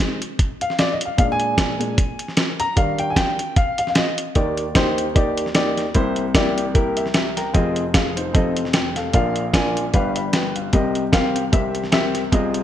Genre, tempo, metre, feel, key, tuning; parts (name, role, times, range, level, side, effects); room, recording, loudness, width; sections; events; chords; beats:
uptempo gospel; 151 BPM; 4/4; swing 56% on 8ths; Eb major; A4 = 438 Hz
warm upright piano; accompaniment; 0.0-12.6 s; F1 to B5; -20 LUFS; left 1 dB
dusty soul sampler-style drum kit; drums; 0.0-12.6 s; hi-hat, kick drum, snare drum; -20 LUFS; equal; gated reverb
moderate lush hall reverb, RT60 1.9 s, digital ambience; bright 1980s-style digital production; -17 LUFS; side -11 dB against mid
0.0-4.4 A section; 4.4-12.6 B section
upright piano solo 0.0-4.4; upright piano fill 6.7-7.5
0.0 Cmadd11; 1.2 Bb7; 2.8 Ebmaj7; 6.0 C7; 7.5 Fm7; 8.3 F7; 9.1 Bb; 9.9 G7; 10.7 Cm7; 11.5 C7
0.39 0.78 | 1.18 1.58 1.98 2.37 | 2.77 3.17 3.56 3.96 | 4.36 4.76 5.16 5.55 | 5.95 6.35 6.75 7.15 | 7.54 7.94 8.34 8.74 | 9.14 9.54 9.93 10.33 | 10.73 11.13 11.53 11.93 | 12.32